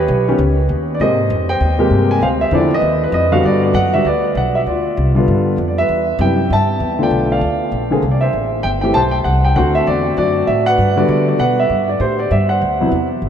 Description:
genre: jazz piano trio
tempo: 196 BPM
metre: 4/4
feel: swing 62% on 8ths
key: G major from 3.4 s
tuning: A4 = 440 Hz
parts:
  - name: warm concert grand piano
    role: melody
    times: 0.0-13.1 s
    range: C3 to A5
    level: -14 LUFS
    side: equal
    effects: none
  - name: upright bass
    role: bass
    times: 0.0-13.3 s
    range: G1 to D3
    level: -18 LUFS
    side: equal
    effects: none
room: wet cathedral reverb, RT60 5.7 s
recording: in a vast, echoing space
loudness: -13 LUFS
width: side -8 dB against mid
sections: 0.0-3.4 A section; 3.4-13.2 B section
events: none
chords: 0.0 Ebaug7; 1.0 Abmaj9; 2.2 Dm9; 2.8 G7b13 (rootless); 3.4 Gmaj7; 4.7 Dm7; 5.3 G7; 5.9 Cmaj7 (rootless); 7.1 Bm7b5; 7.7 Bbadd9; 8.3 Am7; 9.6 D7; 10.8 Gmaj7; 12.0 Am7; 12.6 D9

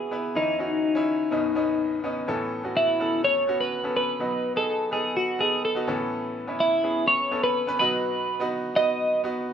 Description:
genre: pop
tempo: 125 BPM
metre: 4/4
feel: straight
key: unclear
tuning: A4 = 440 Hz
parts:
  - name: twelve-string electric guitar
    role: melody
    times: 0.0-9.2 s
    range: D#4 to D#5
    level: -23 LUFS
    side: equal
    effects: none
  - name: bright grand piano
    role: accompaniment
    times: 0.0-9.5 s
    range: B1 to B4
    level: -28 LUFS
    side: right 1 dB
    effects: none
room: wet studio reverb, RT60 0.6 s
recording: rough home demo mix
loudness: -22 LUFS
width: side -8 dB against mid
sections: 0.0-2.3 A section; 2.3-9.5 B section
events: none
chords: 0.4 C#madd9/E; 1.3 Badd9; 2.3 Aadd9; 4.2 B; 5.9 Aadd9; 7.8 B

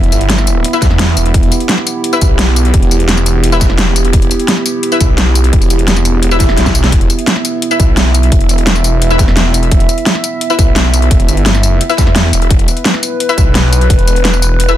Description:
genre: dark technical drum and bass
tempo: 172 BPM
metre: 4/4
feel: straight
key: E minor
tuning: A4 = 442 Hz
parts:
  - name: dark analog pad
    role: sustained chords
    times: 0.0-14.8 s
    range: B3 to E5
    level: -17 LUFS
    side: right 2 dB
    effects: chorus, sidechain pumping
  - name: snarling distorted saw bass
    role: bass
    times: 0.0-14.8 s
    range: E1 to E2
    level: -12 LUFS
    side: equal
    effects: distortion, overdrive, sidechain pumping
  - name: dubstep drum kit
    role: drums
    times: 0.0-14.8 s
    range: hi-hat, snare drum, tambourine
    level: -15 LUFS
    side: equal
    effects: small room ambience
  - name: orchestra-hit-like synth stab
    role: stabs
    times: 0.7-14.7 s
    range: E4 to E5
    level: -18 LUFS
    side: left 4 dB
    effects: built-in reverb, ping-pong delay
  - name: electronic kick drum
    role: drums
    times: 0.8-14.0 s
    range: none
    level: -11 LUFS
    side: equal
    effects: small room ambience
  - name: swell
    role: sound effects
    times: 6.3-6.9 s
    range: none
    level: -20 LUFS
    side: equal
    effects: none
room: little or no reverb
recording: dense, heavily limited modern master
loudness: -8 LUFS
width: side -12 dB against mid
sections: 0.0-14.8 A section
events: swell 6.3-6.9; drum fill 6.6-6.9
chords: 0.0 E5

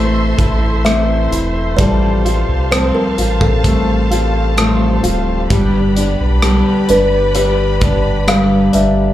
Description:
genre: pop ballad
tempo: 65 BPM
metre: 4/4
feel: straight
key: F major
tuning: A4 = 439 Hz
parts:
  - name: kalimba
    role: melody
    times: 0.0-9.1 s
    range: A4 to F5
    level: -19 LUFS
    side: left 1 dB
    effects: slapback echo
  - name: clear grand piano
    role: accompaniment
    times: 0.0-9.1 s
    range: G3 to F4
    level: -19 LUFS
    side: left 2 dB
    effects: slapback echo
  - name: warm studio string section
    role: sustained chords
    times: 0.0-9.1 s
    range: G4 to C6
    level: -24 LUFS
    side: equal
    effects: none
  - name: picked steel-string acoustic guitar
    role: arpeggios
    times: 0.0-9.1 s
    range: G2 to A4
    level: -19 LUFS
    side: equal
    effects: slapback echo
  - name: sub bass with octave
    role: bass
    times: 0.0-9.1 s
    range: D1 to C2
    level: -16 LUFS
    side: equal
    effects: none
  - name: modern studio drum kit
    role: drums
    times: 0.4-9.0 s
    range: hi-hat, kick drum, rim click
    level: -19 LUFS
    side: equal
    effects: none
room: light reverb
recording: live gig heard through the venue's PA, club reverb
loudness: -11 LUFS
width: side -13 dB against mid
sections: 0.0-9.1 A section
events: none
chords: 0.0 Am; 1.8 Fadd9/A; 5.5 G

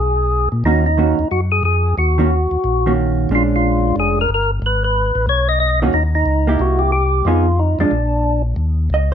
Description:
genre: soul jazz organ trio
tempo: 181 BPM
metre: 4/4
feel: swing 63% on 8ths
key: Eb minor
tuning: A4 = 440 Hz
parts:
  - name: percussive tonewheel organ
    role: melody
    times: 0.0-8.4 s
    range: D4 to Eb5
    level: -18 LUFS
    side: left 1 dB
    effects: slow rotary speaker, overdrive
  - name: mellow tonewheel organ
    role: bass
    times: 0.0-9.1 s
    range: F1 to Bb2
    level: -18 LUFS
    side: left 1 dB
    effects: slow rotary speaker
  - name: vintage hollow-body jazz guitar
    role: accompaniment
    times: 0.7-9.1 s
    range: Eb3 to Eb5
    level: -18 LUFS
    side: right 4 dB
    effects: none
room: light reverb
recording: dark, warm production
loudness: -14 LUFS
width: side -8 dB against mid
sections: 0.0-8.6 A section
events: none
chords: 0.0 Abm; 0.6 Ebm7; 3.3 Bb7#9; 4.6 Abm; 5.9 Eb5; 6.6 C7; 7.3 Fm7b5; 7.9 Bb; 8.6 Eb7(no3)

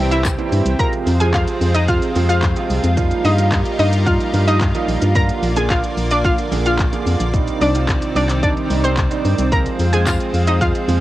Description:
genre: dance-pop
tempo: 110 BPM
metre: 4/4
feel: straight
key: F dorian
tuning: A4 = 440 Hz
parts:
  - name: clear concert grand piano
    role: accompaniment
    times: 0.0-11.0 s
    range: C3 to Ab4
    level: -24 LUFS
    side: right 7 dB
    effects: sidechain pumping, cassette tape
  - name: lush unison pad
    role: sustained chords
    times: 0.0-11.0 s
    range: C3 to D5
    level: -23 LUFS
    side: equal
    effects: chorus, sidechain pumping, cassette tape
  - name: organ-like FM bass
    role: bass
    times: 0.0-11.0 s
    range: Bb1 to G2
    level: -18 LUFS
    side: equal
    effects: sidechain pumping
  - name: analog pluck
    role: melody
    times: 0.1-10.7 s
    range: C4 to Bb5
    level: -21 LUFS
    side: left 1 dB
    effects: chorus, cassette tape, analog delay
  - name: pop drum kit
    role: drums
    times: 0.1-11.0 s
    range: handclaps, hi-hat, kick drum, shaker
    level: -21 LUFS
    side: equal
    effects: cassette tape
  - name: tambourine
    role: percussion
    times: 0.2-0.4, 10.1-10.2 s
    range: none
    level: -32 LUFS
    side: left 9 dB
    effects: none
room: light reverb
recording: home recording on cassette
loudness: -14 LUFS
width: side -15 dB against mid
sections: 0.8-11.0 A section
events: drop 0.8-11.0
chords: 0.0 C; 0.8 Fm; 3.0 Ebadd9; 5.2 Bb; 7.3 Cmadd9; 9.5 Fm

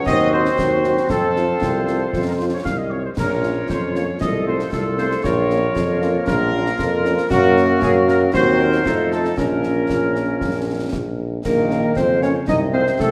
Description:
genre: military-style march for wind band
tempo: 116 BPM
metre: 2/4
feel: straight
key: Bb minor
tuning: A4 = 440 Hz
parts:
  - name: clear woodwind section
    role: second line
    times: 0.0-13.1 s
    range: Db4 to Eb5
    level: -26 LUFS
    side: equal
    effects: none
  - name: mellow trombone section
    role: sustained chords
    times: 0.0-13.1 s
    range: C3 to Eb4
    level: -29 LUFS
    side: equal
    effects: none
  - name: warm trumpet section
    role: melody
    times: 0.1-12.8 s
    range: Gb4 to F5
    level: -25 LUFS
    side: equal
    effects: none
  - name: clear tuba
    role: bass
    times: 0.1-13.1 s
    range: Bb1 to Gb2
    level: -24 LUFS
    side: equal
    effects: none
  - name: concert snare drum, concert bass drum and clash cymbals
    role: drums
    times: 0.1-13.1 s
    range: none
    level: -29 LUFS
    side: equal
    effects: none
  - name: mellow French horn section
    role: accompaniment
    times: 0.3-12.8 s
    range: A3 to Gb4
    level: -27 LUFS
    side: equal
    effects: none
  - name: warm euphonium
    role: second line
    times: 11.5-13.1 s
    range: A3 to Eb4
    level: -23 LUFS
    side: equal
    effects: none
room: wet scoring stage reverb, RT60 1.7 s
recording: none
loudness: -19 LUFS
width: mono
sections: 0.0-11.4 A section; 11.4-13.1 A section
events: none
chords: 0.1 Cdim/Eb; 1.1 F; 3.2 Bbm; 4.2 F/C; 5.2 Bbm; 7.3 Gb; 8.3 Cdim/Eb; 8.9 F7; 9.4 Bbm; 12.5 F/C

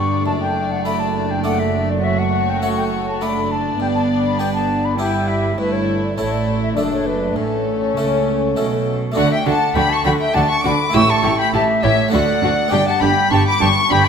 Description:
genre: classical, baroque-style concerto movement with solo episodes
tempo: 101 BPM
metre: 3/4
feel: straight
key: D major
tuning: A4 = 440 Hz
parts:
  - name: mellow concert flute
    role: melody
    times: 0.0-14.1 s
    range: A4 to C#6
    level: -21 LUFS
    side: left 2 dB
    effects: none
  - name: rich chamber violin section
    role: melody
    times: 0.0-14.1 s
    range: A4 to E6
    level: -23 LUFS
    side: left 3 dB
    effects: none
  - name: warm studio violin section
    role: second line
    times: 0.0-14.0 s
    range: C#4 to G4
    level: -24 LUFS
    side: left 4 dB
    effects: none
  - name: dark chamber viola section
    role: accompaniment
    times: 0.0-14.0 s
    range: G3 to E4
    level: -25 LUFS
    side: right 2 dB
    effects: none
  - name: harpsichord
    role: accompaniment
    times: 0.0-14.1 s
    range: D2 to D5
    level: -24 LUFS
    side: right 3 dB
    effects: none
  - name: dark chamber cello section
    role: bass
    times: 0.0-14.0 s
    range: D2 to D3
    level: -24 LUFS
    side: right 3 dB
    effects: none
  - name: rich chamber double bass section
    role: bass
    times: 0.0-14.0 s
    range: F#1 to D2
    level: -24 LUFS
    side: right 4 dB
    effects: none
room: moderate scoring stage reverb, RT60 1.7 s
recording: minimal, uncompressed stereo recording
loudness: -15 LUFS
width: side -6 dB against mid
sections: 0.0-9.2 A section; 9.2-14.1 B section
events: none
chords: 0.3 D/F#; 2.0 F#m; 3.2 D/F#; 3.8 G; 5.0 Em/G; 5.6 A5/G; 6.8 D/F#; 7.4 A; 9.2 D; 10.9 A5; 12.1 D; 12.7 G

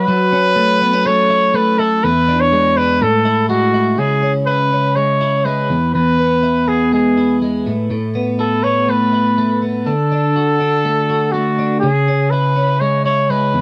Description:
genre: indie pop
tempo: 122 BPM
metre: 4/4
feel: straight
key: unclear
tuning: A4 = 441 Hz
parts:
  - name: warm trumpet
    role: melody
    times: 0.0-13.6 s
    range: F#4 to C#5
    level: -18 LUFS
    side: equal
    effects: none
  - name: twelve-string electric guitar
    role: arpeggios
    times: 0.0-13.6 s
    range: E2 to F#4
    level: -18 LUFS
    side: equal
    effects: lush chorus
room: light reverb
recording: dry, close 1970s-style studio recording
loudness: -15 LUFS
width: mono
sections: 0.0-4.0 A section; 4.0-13.6 B section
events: none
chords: 0.0 F#m7; 2.0 E7; 3.0 A5; 4.0 C#m; 5.7 E; 7.7 Asus2; 9.9 D; 11.8 C#m

